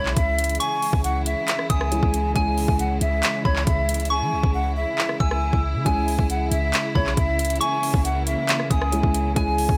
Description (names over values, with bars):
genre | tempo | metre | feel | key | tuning
hip hop, trap | 137 BPM | 4/4 | half-time | C# dorian | A4 = 444 Hz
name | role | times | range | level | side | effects
mellow hollow jazz flute | melody | 0.0-9.8 s | C#5 to G#5 | -28 LUFS | equal | delay
soft synth bell | second line | 0.0-9.8 s | G#5 to E6 | -32 LUFS | equal | chorus, phaser, delay
dark grand piano | accompaniment | 0.0-9.8 s | G#3 to G#4 | -33 LUFS | equal | none
rich studio string section | sustained chords | 0.0-9.8 s | C#3 to E4 | -33 LUFS | equal | none
clean 808-style bass | bass | 0.0-9.8 s | B1 to E3 | -27 LUFS | equal | none
trap drum kit | drums | 0.1-9.8 s | handclaps, hi-hat, kick drum, rim click | -26 LUFS | equal | none
room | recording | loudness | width
small room reverb | none | -22 LUFS | mono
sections
0.0-9.8 A section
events
hi-hats muted 4.1-5.9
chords
0.0 C#m